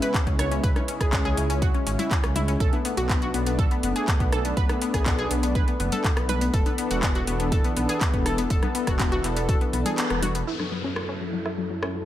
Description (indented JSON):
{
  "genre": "progressive house",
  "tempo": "122 BPM",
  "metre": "4/4",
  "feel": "straight",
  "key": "F# minor",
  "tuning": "A4 = 440 Hz",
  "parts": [
    { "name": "lush unison pad", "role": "sustained chords", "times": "0.0-12.1 s", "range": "F#2 to A4", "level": "-30 LUFS", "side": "right 1 dB", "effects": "chorus, sidechain pumping" },
    { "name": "analog pluck", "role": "arpeggios", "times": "0.0-12.0 s", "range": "F#3 to C#5", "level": "-28 LUFS", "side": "left 3 dB", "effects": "chorus, sidechain pumping, dub echo" },
    { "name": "pop drum kit", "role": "drums", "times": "0.0-10.4 s", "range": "handclaps, hi-hat, rim click", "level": "-30 LUFS", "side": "equal", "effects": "sidechain pumping on hats, studio reverb, sidechain pumping on cymbals" },
    { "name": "electronic kick drum", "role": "drums", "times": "0.1-9.6 s", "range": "none", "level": "-24 LUFS", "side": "equal", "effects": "studio reverb" },
    { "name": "dark detuned saw bass", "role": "bass", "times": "0.3-10.4 s", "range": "E1 to C#2", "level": "-28 LUFS", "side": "equal", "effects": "sidechain pumping" },
    { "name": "electronic congas and rim click", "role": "percussion", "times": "0.4-11.9 s", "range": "none", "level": "-33 LUFS", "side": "left 3 dB", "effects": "sidechain pumping on perc, studio reverb, sidechain pumping on snare" },
    { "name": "downlifter", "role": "sound effects", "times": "10.5-12.1 s", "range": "none", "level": "-35 LUFS", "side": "left 1 dB", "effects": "none" }
  ],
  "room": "light reverb",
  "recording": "none",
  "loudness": "-22 LUFS",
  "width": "side -12 dB against mid",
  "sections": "0.0-10.5 A section; 10.5-12.1 B section",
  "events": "kick drops out 10.0-10.5; band accent 10.0; filter sweep on synth pluck 10.5-12.1; filter sweep on analog synth pad 10.5-12.1",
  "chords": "0.0 C#m7; 2.6 Bm7; 6.5 E7sus4; 10.5 F#m7"
}